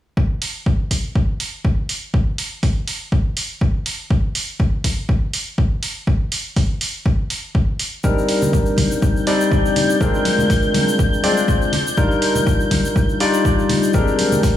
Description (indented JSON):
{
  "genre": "deep house",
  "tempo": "122 BPM",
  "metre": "4/4",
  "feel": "swing 55% on 16ths",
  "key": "C minor",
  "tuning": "A4 = 442 Hz",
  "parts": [
    { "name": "electronic kick drum", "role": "drums", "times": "0.2-14.5 s", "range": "none", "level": "-18 LUFS", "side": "equal", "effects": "none" },
    { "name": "electronic hi-hat", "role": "drums", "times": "0.4-14.5 s", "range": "none", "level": "-25 LUFS", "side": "right 2 dB", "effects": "none" },
    { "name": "barky tine electric piano", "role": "stabs", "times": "8.0-14.6 s", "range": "G3 to D5", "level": "-18 LUFS", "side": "left 1 dB", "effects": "analog chorus, sidechain pumping, tape echo" },
    { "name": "tube shaker", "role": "percussion", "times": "8.0-14.5 s", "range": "none", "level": "-33 LUFS", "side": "left 2 dB", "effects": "dub echo" },
    { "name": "soft string machine", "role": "texture", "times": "8.9-14.6 s", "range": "G6", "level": "-25 LUFS", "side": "left 2 dB", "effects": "ensemble chorus, sidechain pumping" },
    { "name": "congas", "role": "percussion", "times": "8.4-14.4 s", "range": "none", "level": "-24 LUFS", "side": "left 2 dB", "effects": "dub echo" }
  ],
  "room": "light reverb, studio reverb",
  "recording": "echo-heavy mix",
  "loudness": "-16 LUFS",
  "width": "side -12 dB against mid",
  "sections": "0.2-14.6 A section",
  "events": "none",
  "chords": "0.2 N.C.; 8.0 Cm9; 10.0 Bb9; 11.7 Ebmaj9; 13.9 Abmaj9#11"
}